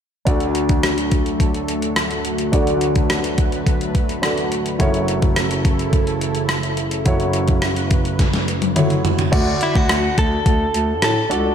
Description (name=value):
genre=1980s-style pop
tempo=106 BPM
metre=4/4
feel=straight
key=unclear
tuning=A4 = 440 Hz
part: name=warm concert grand piano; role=accompaniment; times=0.3-11.5 s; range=F#1 to D5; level=-21 LUFS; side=equal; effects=slapback echo
part: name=lush unison pad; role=sustained chords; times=0.7-9.3 s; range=C#3 to B4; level=-25 LUFS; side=equal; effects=chorus, phaser
part: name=gated 80s digital drum machine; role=drums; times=0.3-11.4 s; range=crash cymbal, hi-hat, kick drum, rim click, snare drum, toms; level=-19 LUFS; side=equal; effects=gated reverb, gated reverb snare, overdrive
part: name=mellow bass clarinet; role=bass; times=9.3-11.5 s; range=C#2 to A2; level=-22 LUFS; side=equal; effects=none
part: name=direct-recorded clean electric guitar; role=melody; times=9.6-11.5 s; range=E4 to A4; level=-20 LUFS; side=equal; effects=slapback echo
room=moderate lush hall reverb, RT60 1.9 s, digital ambience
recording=big arena sound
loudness=-16 LUFS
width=side -8 dB against mid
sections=0.3-9.3 A section; 9.3-11.5 B section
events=drum fill 8.2-9.3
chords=0.3 D; 4.8 F#m7; 9.3 D